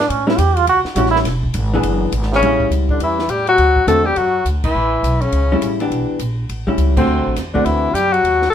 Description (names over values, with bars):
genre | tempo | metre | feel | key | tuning
jazz, small-group swing and bop | 206 BPM | 4/4 | swing 62% on 8ths | A mixolydian | A4 = 441 Hz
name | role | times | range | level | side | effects
trombone with straight mute | second line | 0.0-8.5 s | C3 to G4 | -20 LUFS | right 5 dB | none
upright bass | bass | 0.0-8.5 s | E1 to A2 | -19 LUFS | equal | none
compact cocktail drum kit | drums | 0.0-8.5 s | crash cymbal, hi-hat, kick drum, ride cymbal, snare drum | -27 LUFS | equal | none
vintage hollow-body jazz guitar | accompaniment | 0.3-7.9 s | D3 to G#4 | -19 LUFS | left 1 dB | none
warm tenor saxophone | melody | 2.4-8.5 s | C4 to A4 | -16 LUFS | left 4 dB | none
room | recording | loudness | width
moderate studio reverb, RT60 0.8 s | minimal, uncompressed stereo recording | -14 LUFS | side -9 dB against mid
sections
0.0-2.4 A section; 2.4-8.5 B section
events
trombone solo 0.0-2.4; band accent 4.6, 6.9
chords
0.1 A7; 1.3 E7; 2.4 A7; 3.6 D7; 4.7 A7; 5.9 Em7; 6.5 A7; 7.1 D7